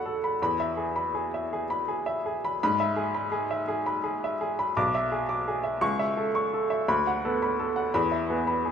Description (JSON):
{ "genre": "classical, romantic character piece for solo piano", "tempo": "56 BPM (dotted quarters)", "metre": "6/8", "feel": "rubato", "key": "E major", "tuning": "A4 = 439 Hz", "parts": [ { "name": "clear upright piano", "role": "solo", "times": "0.0-8.7 s", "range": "B1 to D6", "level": "-25 LUFS", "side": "equal", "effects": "none" } ], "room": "moderate recital hall reverb, RT60 1.7 s", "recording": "recorded in a church or concert hall", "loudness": "-25 LUFS", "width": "side -7 dB against mid", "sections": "0.0-8.7 A section", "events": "none", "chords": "0.4 E; 2.6 E/G#; 4.8 E7/B; 5.8 A/C#; 6.9 Bm7/D; 7.9 E" }